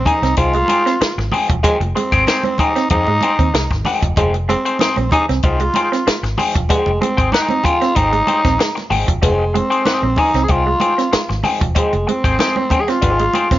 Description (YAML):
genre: funk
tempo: 95 BPM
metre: 4/4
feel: straight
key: F minor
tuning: A4 = 441 Hz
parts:
  - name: growling tenor saxophone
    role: melody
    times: 0.0-13.6 s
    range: Ab3 to Ab4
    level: -18 LUFS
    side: equal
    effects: none
  - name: vintage muted fingered electric bass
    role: bass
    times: 0.0-13.6 s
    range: E1 to Ab2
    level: -20 LUFS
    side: equal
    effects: none
  - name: electric guitar at the edge of break-up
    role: accompaniment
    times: 0.1-13.5 s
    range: Eb4 to Ab5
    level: -20 LUFS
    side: left 4 dB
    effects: wah
  - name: electric guitar through a small old amp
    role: riff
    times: 0.1-13.6 s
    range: F3 to C4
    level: -24 LUFS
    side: right 6 dB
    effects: none
  - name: compact cocktail drum kit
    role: drums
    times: 0.1-13.6 s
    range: hi-hat, kick drum, snare drum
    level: -19 LUFS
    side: equal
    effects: none
  - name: congas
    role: percussion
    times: 0.1-13.5 s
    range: none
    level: -27 LUFS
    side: right 4 dB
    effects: none
room: light reverb, small room ambience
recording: nothing above 7.5 kHz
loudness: -13 LUFS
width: side -14 dB against mid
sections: 0.0-13.6 A section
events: none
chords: 0.0 Fm9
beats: 0.38 1.01 | 1.64 2.27 2.91 3.54 | 4.17 4.80 5.43 6.07 | 6.70 7.33 7.96 8.60 | 9.23 9.86 10.49 11.13 | 11.76 12.39 13.03